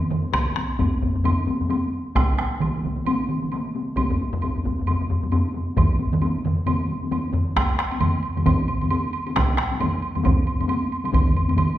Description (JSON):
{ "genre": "japanese traditional, taiko drum ensemble", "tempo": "133 BPM", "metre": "4/4", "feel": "swing 60% on 16ths", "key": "none", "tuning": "none", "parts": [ { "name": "taiko ensemble", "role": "percussion", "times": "0.0-11.7 s", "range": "none", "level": "-26 LUFS", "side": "left 3 dB", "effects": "none" }, { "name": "taiko ensemble", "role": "percussion", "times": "0.1-11.7 s", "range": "none", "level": "-24 LUFS", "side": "left 1 dB", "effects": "none" }, { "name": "taiko ensemble", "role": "percussion", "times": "0.1-11.7 s", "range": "none", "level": "-26 LUFS", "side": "right 3 dB", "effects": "none" }, { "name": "taiko ensemble", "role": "percussion", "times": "0.3-11.3 s", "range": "none", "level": "-24 LUFS", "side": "right 1 dB", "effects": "none" }, { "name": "woodblock", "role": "percussion", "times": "0.3-11.7 s", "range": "none", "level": "-30 LUFS", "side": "right 3 dB", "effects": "none" } ], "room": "wet recital hall reverb, RT60 1.4 s", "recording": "recorded in a church or concert hall, faint mains hum", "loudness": "-20 LUFS", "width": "side -13 dB against mid", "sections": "0.0-7.6 A section; 7.6-11.8 B section", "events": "speeding up 0.0-11.8", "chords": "none" }